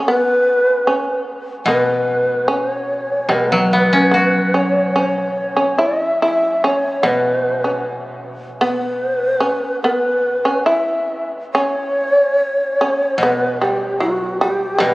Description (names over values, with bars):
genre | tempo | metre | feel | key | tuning
japanese traditional, Japanese chamber music | 69-78 BPM | 2/4 | rubato | unclear | A4 = 441 Hz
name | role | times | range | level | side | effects
shamisen | second line | 0.0-14.9 s | F#3 to E4 | -20 LUFS | right 1 dB | none
breathy reedy long shakuhachi | melody | 0.1-14.9 s | F#4 to E5 | -17 LUFS | equal | none
koto | accompaniment | 1.7-9.4, 13.2-14.9 s | B2 to F#4 | -19 LUFS | equal | none
room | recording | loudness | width
wet cathedral reverb, RT60 5.1 s | recorded on a phone in the room, club reverb, compression | -15 LUFS | side -20 dB against mid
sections
0.0-11.6 A section; 11.6-14.9 B section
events
none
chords
none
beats
| 0.06 0.87 | 1.67 2.48 | 3.30 4.13 | 4.97 5.82 | 6.65 7.46 | 8.26 9.04 | 9.85 10.69 | 11.55 12.40 | 13.22 14.02 | 14.81